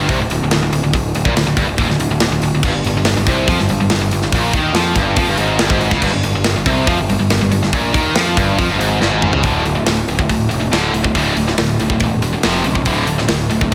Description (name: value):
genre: heavy metal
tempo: 141 BPM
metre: 4/4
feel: straight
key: D minor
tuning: A4 = 439 Hz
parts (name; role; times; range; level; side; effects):
- tight distorted guitar; riff; 0.0-13.7 s; D2 to F3; -19 LUFS; equal; distortion, slapback echo
- fuzz picked electric bass; bass; 0.0-13.7 s; D1 to F2; -22 LUFS; equal; overdrive
- tight metal drum kit; drums; 0.1-13.7 s; crash cymbal, hi-hat, kick drum, snare drum, toms; -21 LUFS; equal; none
room: moderate lush hall reverb, RT60 2.2 s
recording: big arena sound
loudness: -16 LUFS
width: mono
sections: 0.0-9.4 A section; 9.4-13.7 B section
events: drum fill 9.0-9.4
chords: 0.0 N.C.; 2.6 G7(no3); 9.4 D5; 12.4 F5; 12.9 D5